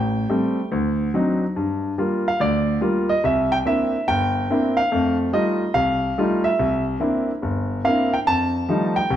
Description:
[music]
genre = solo jazz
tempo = 143 BPM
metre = 4/4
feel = swing 66% on 8ths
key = unclear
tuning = A4 = 440 Hz
[part]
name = warm grand piano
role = solo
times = 0.0-9.2 s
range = G1 to A5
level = -19 LUFS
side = equal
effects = none
[sound]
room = wet large studio reverb, RT60 1.4 s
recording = none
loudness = -19 LUFS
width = side -10 dB against mid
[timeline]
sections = 0.0-8.3 A section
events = none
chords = 0.0 Am7; 0.7 D7b9; 1.6 Gm7; 3.2 C9; 4.9 F9; 6.6 C9; 8.3 F9

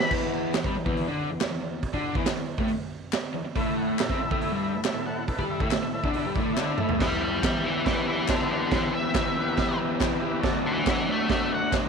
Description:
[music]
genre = garage rock duo or trio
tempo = 139 BPM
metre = 4/4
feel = straight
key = E minor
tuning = A4 = 441 Hz
[part]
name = octave-fuzz lead guitar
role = melody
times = 0.0-0.1, 7.0-11.7 s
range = A4 to B5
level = -28 LUFS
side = left 2 dB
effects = distortion, tape echo
[part]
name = combo organ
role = sustained chords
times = 0.0-0.1, 3.6-11.9 s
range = E4 to F#5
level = -34 LUFS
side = left 1 dB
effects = lush chorus
[part]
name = raw garage guitar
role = riff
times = 0.0-11.9 s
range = E2 to G4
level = -28 LUFS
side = left 2 dB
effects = overdrive
[part]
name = raw garage drum kit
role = drums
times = 0.0-11.8 s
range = crash cymbal, hi-hat, kick drum, snare drum, toms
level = -28 LUFS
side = right 3 dB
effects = none
[part]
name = group handclap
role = percussion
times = 0.5-11.8 s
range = none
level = -36 LUFS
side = left 14 dB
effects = none
[sound]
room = light reverb, studio ambience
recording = 1960s-style stereo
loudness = -24 LUFS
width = side -5 dB against mid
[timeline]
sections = 0.1-7.0 A section; 7.0-11.9 B section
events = drum fill 6.6-7.0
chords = 0.1 N.C.; 3.6 A5; 7.0 Em; 10.4 D

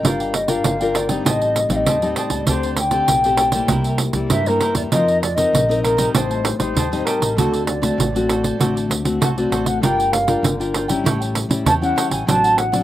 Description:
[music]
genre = samba and choro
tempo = 98 BPM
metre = 4/4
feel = straight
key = G minor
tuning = A4 = 438 Hz
[part]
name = mellow wooden flute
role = melody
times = 0.0-12.8 s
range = A4 to A5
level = -20 LUFS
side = equal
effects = none
[part]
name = cavaquinho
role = accompaniment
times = 0.0-12.8 s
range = D4 to A5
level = -29 LUFS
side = right 1 dB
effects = slapback echo
[part]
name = nylon-string guitar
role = accompaniment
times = 0.0-12.8 s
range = G2 to Bb4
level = -22 LUFS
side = left 3 dB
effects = none
[part]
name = upright bass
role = bass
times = 0.0-12.8 s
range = G1 to G2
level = -26 LUFS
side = right 1 dB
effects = none
[part]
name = pandeiro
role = percussion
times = 0.0-12.8 s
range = none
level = -21 LUFS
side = right 4 dB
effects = none
[sound]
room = little or no reverb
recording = recorded outdoors, with no room sound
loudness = -16 LUFS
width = side -13 dB against mid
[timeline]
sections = 0.0-12.8 A section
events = none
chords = 0.0 Gm7; 1.3 Am7b5; 2.5 D7sus4; 3.7 C7; 4.9 F7sus4; 6.1 Am7b5; 7.4 D7; 9.8 Gm7; 11.0 A7; 12.3 D7/A

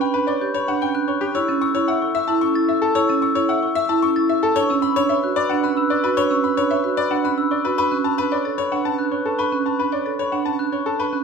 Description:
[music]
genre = classical, minimalist pattern music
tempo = 112 BPM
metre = 3/4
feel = straight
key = unclear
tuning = A4 = 440 Hz
[part]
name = bright baby grand piano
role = melody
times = 0.0-11.2 s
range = G4 to C#6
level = -23 LUFS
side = left 5 dB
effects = none
[part]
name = dark clarinet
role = second line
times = 0.0-11.2 s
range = A4 to B4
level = -29 LUFS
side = right 2 dB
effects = none
[part]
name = glockenspiel with rubber mallets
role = arpeggios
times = 0.0-11.2 s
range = B5 to A6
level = -25 LUFS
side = left 4 dB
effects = none
[part]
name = marimba with soft mallets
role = arpeggios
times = 0.0-11.2 s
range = C#4 to E5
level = -21 LUFS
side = right 5 dB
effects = none
[sound]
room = wet large studio reverb, RT60 1.3 s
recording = none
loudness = -18 LUFS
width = side -5 dB against mid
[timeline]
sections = 0.0-11.2 A section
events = none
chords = 0.0 Gmaj7; 1.4 A; 4.6 Bmadd9; 7.8 D6

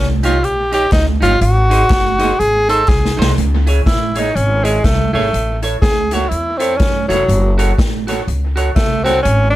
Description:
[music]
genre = ska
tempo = 122 BPM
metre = 4/4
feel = swing 60% on 8ths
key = C# harmonic minor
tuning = A4 = 444 Hz
[part]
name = clear tenor saxophone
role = melody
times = 0.0-9.6 s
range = F#3 to A4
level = -16 LUFS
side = equal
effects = none
[part]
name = upright bass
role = bass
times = 0.0-9.6 s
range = E#1 to F#2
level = -17 LUFS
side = equal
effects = none
[part]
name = clean electric guitar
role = accompaniment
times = 0.2-9.2 s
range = D#4 to C#5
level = -21 LUFS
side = right 3 dB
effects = none
[part]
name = street-band drum kit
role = drums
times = 0.2-9.4 s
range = hi-hat, kick drum, snare drum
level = -18 LUFS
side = equal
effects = tape echo
[part]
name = group handclap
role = percussion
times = 0.9-3.0 s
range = none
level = barely audible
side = none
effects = none
[sound]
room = light reverb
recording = none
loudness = -12 LUFS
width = side -15 dB against mid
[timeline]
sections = 0.0-3.4 A section; 3.4-9.6 A section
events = tenor saxophone solo 0.0-3.4, 3.4-9.6; drum fill 2.9-3.4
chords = 0.0 D#7; 1.4 G#; 3.4 C#m; 5.3 A; 7.3 F#m

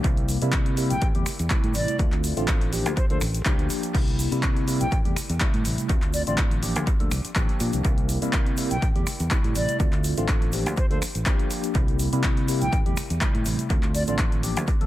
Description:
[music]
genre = filtered disco house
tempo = 123 BPM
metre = 4/4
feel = swing 54% on 16ths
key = C mixolydian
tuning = A4 = 440 Hz
[part]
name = tine electric piano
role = accompaniment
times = 0.0-14.9 s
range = C3 to A4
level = -29 LUFS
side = equal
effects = medium stereo tremolo, phaser, vintage 12-bit sampler grit, sidechain pumping, analog delay
[part]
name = fingered electric bass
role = bass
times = 0.0-14.9 s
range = A1 to C3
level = -27 LUFS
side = equal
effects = sidechain pumping
[part]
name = electronic kick drum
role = drums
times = 0.0-14.8 s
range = none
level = -24 LUFS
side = equal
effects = overdrive
[part]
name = punchy analog drum machine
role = drums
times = 0.0-14.9 s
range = crash cymbal, finger snaps, handclaps, hi-hat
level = -31 LUFS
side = left 1 dB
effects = overdrive, sidechain pumping on hats, sidechain pumping on cymbals, analog delay
[part]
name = egg shaker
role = percussion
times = 0.0-14.8 s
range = none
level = -38 LUFS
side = right 6 dB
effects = sidechain pumping on perc
[part]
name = silver concert flute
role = melody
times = 0.9-14.2 s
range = C5 to G5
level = -32 LUFS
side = right 1 dB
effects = sidechain pumping, analog delay
[sound]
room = light reverb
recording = echo-heavy mix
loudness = -21 LUFS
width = side -14 dB against mid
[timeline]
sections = 0.0-14.9 A section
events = none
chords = 0.0 C7; 1.0 Am7; 2.0 Dm7; 2.7 Gm7; 3.9 C7; 4.9 Am7; 5.9 Dm7; 6.6 Gm7; 7.8 C7; 8.8 Am7; 9.8 Dm7; 10.5 Gm7; 11.8 C7; 12.7 Am7; 13.7 Dm7

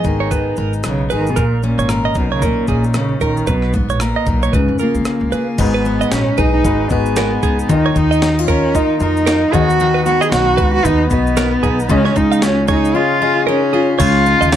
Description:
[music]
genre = acoustic pop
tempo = 114 BPM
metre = 4/4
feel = swing 60% on 16ths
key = unclear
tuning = A4 = 440 Hz
[part]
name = dark cello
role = melody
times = 0.0-14.6 s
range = G#2 to G#4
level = -17 LUFS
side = right 1 dB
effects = none
[part]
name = picked steel-string acoustic guitar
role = accompaniment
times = 0.0-14.6 s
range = G#2 to B4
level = -20 LUFS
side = left 6 dB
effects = none
[part]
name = direct-recorded clean electric guitar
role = arpeggios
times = 0.0-14.6 s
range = G#4 to E#5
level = -21 LUFS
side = right 8 dB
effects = none
[part]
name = upright bass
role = bass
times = 0.0-14.6 s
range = G#1 to D#3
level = -19 LUFS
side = equal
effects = none
[part]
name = breakbeat sampler-style drum kit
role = drums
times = 0.0-14.6 s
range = crash cymbal, kick drum, rim click, shaker, snare drum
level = -21 LUFS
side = equal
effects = none
[part]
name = clear baby grand piano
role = accompaniment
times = 5.6-14.0 s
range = G#3 to D#5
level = -24 LUFS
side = left 4 dB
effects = none
[sound]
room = little or no reverb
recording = close, detailed microphones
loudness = -13 LUFS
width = side -10 dB against mid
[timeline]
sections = 0.0-5.6 A section; 5.6-14.0 B section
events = none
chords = 0.0 G#m; 3.5 Bmaj7; 4.5 C#7; 5.6 G#m7; 7.7 D#sus2; 9.5 B; 11.9 C#add9

